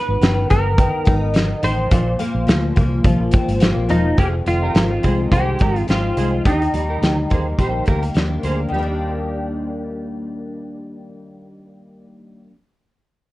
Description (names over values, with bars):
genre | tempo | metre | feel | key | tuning
indie pop, bedroom pop | 106 BPM | 4/4 | swing 55% on 16ths | Eb major | A4 = 435 Hz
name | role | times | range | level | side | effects
semi-hollow electric guitar | melody | 0.0-8.1 s | Eb4 to C5 | -23 LUFS | equal | analog chorus
picked steel-string acoustic guitar | accompaniment | 0.0-12.5 s | F2 to Eb4 | -23 LUFS | left 2 dB | ensemble chorus, warbly pitch drift
vintage muted fingered electric bass | bass | 0.1-12.4 s | Fb1 to Eb2 | -21 LUFS | equal | none
loose indie drum kit | drums | 0.2-8.6 s | hi-hat, kick drum, snare drum | -18 LUFS | equal | none
clean electric guitar | second line | 4.2-10.4 s | Eb4 to C5 | -28 LUFS | right 2 dB | ensemble chorus, analog delay
room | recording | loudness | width
light reverb | worn, warbling old tape, cassette tape, warbly pitch drift | -16 LUFS | side -18 dB against mid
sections
0.0-4.2 A section; 4.2-8.7 B section; 8.7-11.0 C section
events
none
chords
0.0 Abm; 1.9 Bbsus2; 4.2 Fm7; 6.5 Ebmaj7